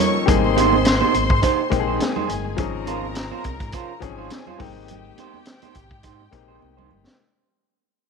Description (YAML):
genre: lush 1970s-style soul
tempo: 104 BPM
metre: 4/4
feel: swing 54% on 16ths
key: Ab major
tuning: A4 = 440 Hz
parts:
  - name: warm studio string section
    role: second line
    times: 0.0-7.2 s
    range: G4 to Db6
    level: -26 LUFS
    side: left 3 dB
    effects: none
  - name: clear grand piano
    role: accompaniment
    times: 0.0-7.2 s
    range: F3 to Bb4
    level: -25 LUFS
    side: left 12 dB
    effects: none
  - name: electric guitar through a small old amp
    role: riff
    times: 0.0-7.1 s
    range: Db4 to C5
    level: -25 LUFS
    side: right 12 dB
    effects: none
  - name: overdriven fingered electric bass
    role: bass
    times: 0.3-7.0 s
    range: G1 to Ab2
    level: -27 LUFS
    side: equal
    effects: none
  - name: vintage drum kit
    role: drums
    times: 0.3-7.2 s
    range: hi-hat, kick drum, snare drum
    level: -23 LUFS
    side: equal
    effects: none
  - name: congas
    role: percussion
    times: 0.3-7.1 s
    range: none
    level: -26 LUFS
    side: right 13 dB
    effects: none
room: light reverb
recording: 1960s-style stereo with parts hard left and right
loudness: -18 LUFS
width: side -5 dB against mid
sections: 0.0-7.2 A section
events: fade-out 0.0-7.2; drum fill 6.6-7.2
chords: 0.3 Abmaj7; 2.6 Dbmaj7/Ab; 4.6 Abmaj7